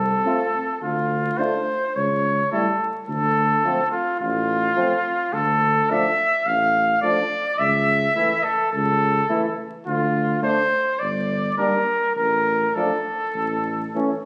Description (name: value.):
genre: classical, brass quintet.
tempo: 106 BPM.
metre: 4/4.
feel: straight.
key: D minor from 5.3 s.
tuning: A4 = 442 Hz.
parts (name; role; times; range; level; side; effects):
warm trumpet; melody; 0.0-14.2 s; F4 to F5; -23 LUFS; equal; none.
mellow tuba; bass; 0.0-13.8 s; G1 to D2; -29 LUFS; equal; none.
mellow French horn; accompaniment; 0.2-14.1 s; A3 to D4; -33 LUFS; equal; none.
mellow flugelhorn; second line; 0.3-14.1 s; C4 to F4; -31 LUFS; equal; none.
warm trombone; accompaniment; 0.3-14.1 s; E3 to A3; -32 LUFS; equal; none.
room: wet recital hall reverb, RT60 1.4 s.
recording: recorded on a phone in the room, club ambience, vinyl crackle.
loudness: -21 LUFS.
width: mono.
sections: 0.0-14.3 A section.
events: none.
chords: 0.0 F (rootless); 0.8 Dm; 2.0 A7/C#; 3.1 Dm; 7.6 A/C#; 9.9 Dm; 11.0 Gm; 12.2 Dm/A (rootless); 13.4 A5.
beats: 0.26 | 0.82 1.39 1.96 2.52 | 3.08 3.65 4.21 4.77 | 5.33 5.90 6.47 7.03 | 7.59 8.16 8.73 9.30 | 9.87 10.43 11.01 11.58 | 12.17 12.76 13.35 13.94.